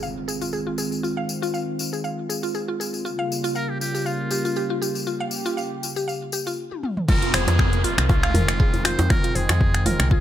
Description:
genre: afro house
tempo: 119 BPM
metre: 4/4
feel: swing 55% on 16ths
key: F minor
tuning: A4 = 438 Hz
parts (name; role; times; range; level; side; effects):
- warm analog pad; sustained chords; 0.0-10.2 s; Db3 to G4; -29 LUFS; equal; chorus, sidechain pumping
- mallet-like synth pluck; arpeggios; 0.0-10.2 s; Eb4 to F5; -28 LUFS; equal; chorus, sidechain pumping, ping-pong delay
- tambourine; percussion; 0.0-6.6 s; none; -32 LUFS; left 5 dB; none
- impact and downlifter; sound effects; 0.0-1.0, 7.1-10.2 s; none; -30 LUFS; equal; none
- trumpet with metal mute; melody; 3.6-10.2 s; F4 to C5; -29 LUFS; right 1 dB; ping-pong delay
- deep house drum kit; drums; 6.7-10.1 s; crash cymbal, finger snaps, hi-hat, toms; -24 LUFS; equal; overdrive
- woody FM bass; bass; 7.1-10.2 s; Eb1 to F2; -23 LUFS; equal; sidechain pumping
- electronic kick drum; drums; 7.1-10.2 s; none; -20 LUFS; equal; overdrive
- djembe; percussion; 7.5-10.0 s; none; -25 LUFS; right 1 dB; none
room: light reverb, small room ambience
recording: none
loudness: -21 LUFS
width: side -11 dB against mid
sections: 0.0-7.1 A section; 7.1-10.2 B section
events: impact 0.0-1.0; filter sweep on synth pluck 0.0-7.1; filter sweep on analog synth pad 0.0-7.1; drum fill 6.7-7.1; drop 7.1-10.2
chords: 0.0 Fm7; 3.1 Gm7b5; 7.1 Fm7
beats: 0.03 0.53 | 1.03 1.54 2.04 2.55 | 3.05 3.56 4.06 4.56 | 5.07 5.57 6.08 6.58 | 7.08 7.59 8.09 8.60 | 9.10 9.61 10.11

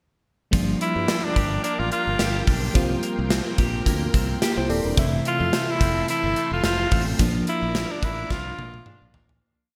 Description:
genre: 1980s-style pop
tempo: 108 BPM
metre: 4/4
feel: swing 55% on 16ths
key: unclear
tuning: A4 = 441 Hz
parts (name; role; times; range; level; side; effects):
- FM electric piano with tremolo; accompaniment; 0.5-9.4 s; C3 to G5; -31 LUFS; equal; phaser
- string machine, full ensemble; sustained chords; 0.5-9.4 s; A4 to D6; -38 LUFS; equal; ensemble chorus
- twelve-string electric guitar; riff; 0.5-9.8 s; E3 to G4; -34 LUFS; equal; subtle chorus, digital delay
- modern bright fingered electric bass; bass; 0.5-9.4 s; Eb1 to G2; -30 LUFS; equal; none
- gated 80s drum kit; drums; 0.5-9.4 s; hi-hat, kick drum, snare drum, toms; -26 LUFS; equal; gated reverb
- clear tenor saxophone; melody; 0.8-9.1 s; D4 to F4; -28 LUFS; equal; digital delay
room: moderate plate reverb, RT60 2.2 s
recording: bright 1980s-style digital production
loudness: -23 LUFS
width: mono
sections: 0.5-9.4 pre-chorus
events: FM electric piano fill 4.1-5.0; fade-out 7.2-9.4; drum fill 8.3-9.4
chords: 0.5 Gm7; 2.8 C7sus4; 5.0 Fmaj7; 7.2 Bb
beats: | 0.53 1.09 1.64 2.20 | 2.75 3.31 3.86 4.42 | 4.97 5.53 6.09 6.64 | 7.20 7.75 8.31 8.86

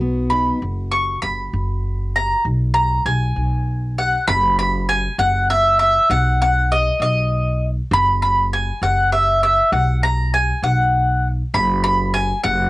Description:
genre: indie folk with a building arrangement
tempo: 66 BPM (dotted quarters)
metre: 6/8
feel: straight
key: F# mixolydian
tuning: A4 = 441 Hz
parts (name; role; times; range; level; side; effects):
- mandolin; melody; 0.0-12.7 s; D#5 to C#6; -17 LUFS; equal; cassette tape
- fingerpicked steel-string acoustic guitar; accompaniment; 0.0-2.5 s; B2 to F#4; -26 LUFS; left 1 dB; cassette tape
- upright bass; bass; 0.0-12.7 s; F#1 to B1; -20 LUFS; equal; none
room: little or no reverb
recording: home recording on cassette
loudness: -15 LUFS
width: side -19 dB against mid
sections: 0.0-4.3 A section; 4.3-12.7 B section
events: build-up 0.0-4.3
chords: 0.0 B; 0.6 F#sus4; 2.4 G#m/B; 4.3 F#7sus4; 6.1 B; 7.9 F#7sus4; 9.7 B5; 11.5 F#sus4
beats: | 0.62 1.53 | 2.45 3.36 | 4.27 5.18 | 6.09 7.00 | 7.91 8.82 | 9.72 10.63 | 11.53 12.44

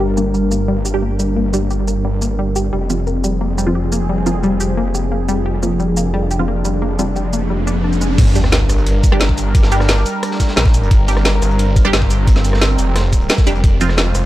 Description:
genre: dark technical drum and bass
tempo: 176 BPM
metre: 4/4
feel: straight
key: G phrygian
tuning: A4 = 440 Hz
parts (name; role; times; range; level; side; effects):
- sweeping resonant pad; sustained chords; 0.0-14.3 s; F3 to C5; -22 LUFS; equal; chorus, sidechain pumping
- analog pluck; arpeggios; 0.0-8.1 s; G3 to G4; -22 LUFS; left 2 dB; chorus, phaser, sidechain pumping, tape echo
- snarling distorted saw bass; bass; 0.0-14.3 s; F1 to Bb1; -17 LUFS; equal; distortion, tube saturation, sidechain pumping
- filtered dub chord stab; stabs; 0.2-13.9 s; F3 to G4; -23 LUFS; right 2 dB; phaser, tape echo
- drum and bass drum kit; drums; 0.2-14.2 s; crash cymbal, hi-hat, rim click, shaker, snare drum; -20 LUFS; equal; overdrive
- riser and sub drop; sound effects; 7.0-9.5 s; none; -23 LUFS; right 1 dB; none
- crunchy breakbeat drum kit; drums; 8.2-14.2 s; hi-hat, snare drum; -28 LUFS; equal; none
- electronic kick drum; drums; 8.2-13.7 s; none; -12 LUFS; equal; none
room: light reverb, digital ambience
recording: dark, warm production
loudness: -13 LUFS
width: side -15 dB against mid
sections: 0.0-8.2 A section; 8.2-14.3 B section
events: filter sweep on synth arpeggio sound 0.0-8.2; riser 7.0-8.2; drop 8.2-14.3; impact 8.2-9.5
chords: 0.0 Gm; 2.7 Fm; 8.2 Gm; 13.6 Fm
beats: | 0.00 0.34 0.68 1.02 | 1.36 1.71 2.05 2.39 | 2.73 3.07 3.41 3.75 | 4.09 4.43 4.77 5.12 | 5.46 5.80 6.14 6.48 | 6.82 7.16 7.50 7.84 | 8.18 8.52 8.87 9.21 | 9.55 9.89 10.23 10.57 | 10.91 11.25 11.59 11.93 | 12.27 12.62 12.96 13.30 | 13.64 13.98

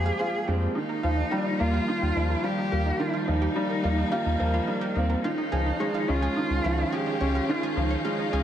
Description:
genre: piano and strings electronica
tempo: 107 BPM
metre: 4/4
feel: straight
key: unclear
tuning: A4 = 436 Hz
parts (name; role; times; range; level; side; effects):
- dark cello; melody; 0.0-8.4 s; Bb3 to Ab4; -31 LUFS; left 1 dB; digital delay
- rich chamber string section; sustained chords; 0.0-8.4 s; Eb3 to G5; -34 LUFS; left 3 dB; none
- clear upright piano; riff; 0.0-8.4 s; Eb3 to G4; -28 LUFS; right 2 dB; digital delay
- warm sub bass; bass; 0.0-8.4 s; Db2 to F2; -27 LUFS; left 1 dB; none
- analog pluck; arpeggios; 0.1-8.4 s; Eb4 to F5; -35 LUFS; right 1 dB; chorus, digital delay
room: light reverb, small room ambience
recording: none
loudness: -24 LUFS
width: side -10 dB against mid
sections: 0.0-8.4 A section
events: none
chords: 0.0 Fmadd9; 0.8 Ebadd9; 5.2 Dbadd9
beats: 0.20 | 0.76 1.32 1.88 2.44 | 3.00 3.56 4.12 4.69 | 5.25 5.81 6.37 6.93 | 7.49 8.05

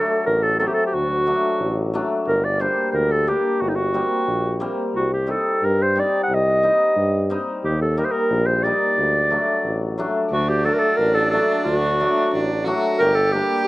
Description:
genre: klezmer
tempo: 90 BPM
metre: 2/4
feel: straight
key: D phrygian dominant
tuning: A4 = 441 Hz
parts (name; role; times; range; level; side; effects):
- breathy clarinet; melody; 0.0-13.7 s; Eb4 to F#5; -19 LUFS; equal; none
- cimbalom; accompaniment; 0.0-13.7 s; F#3 to Eb4; -24 LUFS; left 2 dB; slapback echo
- warm tuba; bass; 0.3-13.4 s; G1 to G2; -24 LUFS; equal; none
- warm violin; second line; 10.3-13.7 s; D4 to G4; -24 LUFS; right 3 dB; none
room: little or no reverb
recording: recorded outdoors, with no room sound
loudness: -17 LUFS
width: side -18 dB against mid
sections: 0.0-10.3 A section; 10.3-13.7 A section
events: none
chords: 0.0 D; 2.3 Gm; 4.9 Cm; 7.6 Eb; 9.0 D; 13.0 Gm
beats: 0.26 | 0.93 1.60 | 2.27 2.94 | 3.60 4.27 | 4.94 5.62 | 6.29 6.96 | 7.63 8.30 | 8.97 9.64 | 10.31 10.98 | 11.65 12.32 | 12.99 13.66

